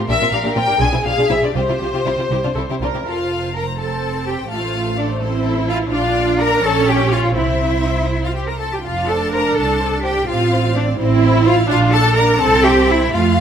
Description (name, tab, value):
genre	quick classical-period movement for string orchestra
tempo	79-87 BPM (dotted quarters)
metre	6/8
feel	rubato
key	F major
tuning	A4 = 440 Hz
part	rich studio viola section	accompaniment	0.0-13.4 s	A3 to Bb4	-21 LUFS	right 3 dB	none
part	rich studio cello section	bass	0.0-13.4 s	Bb2 to Bb4	-19 LUFS	right 1 dB	none
part	rich studio violin section	melody	0.1-13.0 s	A4 to G#5	-24 LUFS	left 4 dB	none
part	rich studio violin section	second line	0.1-13.4 s	C4 to Bb5	-24 LUFS	left 4 dB	none
part	rich studio double bass section	bass	0.1-13.4 s	F1 to F2	-21 LUFS	right 2 dB	none
room	moderate scoring stage reverb, RT60 1.9 s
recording	none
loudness	-14 LUFS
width	side -8 dB against mid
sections	0.0-3.1 A section; 3.1-13.4 B section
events	none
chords	0.1 Gm/Bb; 0.8 Bdim7; 1.6 Csus4; 2.3 N.C.; 3.1 F; 4.5 F/A; 5.9 Bb; 6.6 Bbm; 7.4 C; 8.8 F; 10.3 F/A; 11.7 Bb; 12.4 C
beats	| 0.08 0.80 | 1.55 2.31 | 3.06 3.79 | 4.50 5.21 | 5.91 6.63 | 7.36 8.11 | 8.85 9.57 | 10.28 10.99 | 11.69 12.40 | 13.13